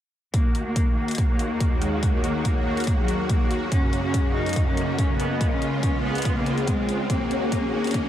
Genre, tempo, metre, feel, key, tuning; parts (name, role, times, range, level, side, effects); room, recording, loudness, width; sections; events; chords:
heavy wobble dubstep; 142 BPM; 4/4; swing 53% on 16ths, half-time; Eb minor; A4 = 438 Hz
warm cello; melody; 0.3-8.1 s; Gb3 to Eb4; -28 LUFS; left 1 dB; low-pass filter, tape echo
supersaw chords; sustained chords; 0.3-8.1 s; Db2 to Gb4; -28 LUFS; right 1 dB; ensemble chorus, sidechain pumping
electronic hi-hat; drums; 0.3-8.0 s; -35 LUFS; left 3 dB; high-pass filter on hats, high-pass filter on room
electronic kick drum; drums; 0.3-8.0 s; -23 LUFS; equal
riser; sound effects; 3.4-8.1 s; -33 LUFS; equal
warbly tape-like pad; texture; 1.1-8.1 s; Gb3 to Ab5; -32 LUFS; left 3 dB; chorus, built-in reverb, phaser, sidechain pumping
moderate church reverb, RT60 2.7 s; dreamy mix soaked in reverb, high-pass filter; -21 LUFS; side -11 dB against mid
0.3-8.1 A section
build-up 0.3-8.1; filter sweep 0.3-8.1; riser 3.4-8.1; drum fill 7.1-8.1
0.3 Ebm; 3.7 Gb; 5.4 Db; 7.1 Ebm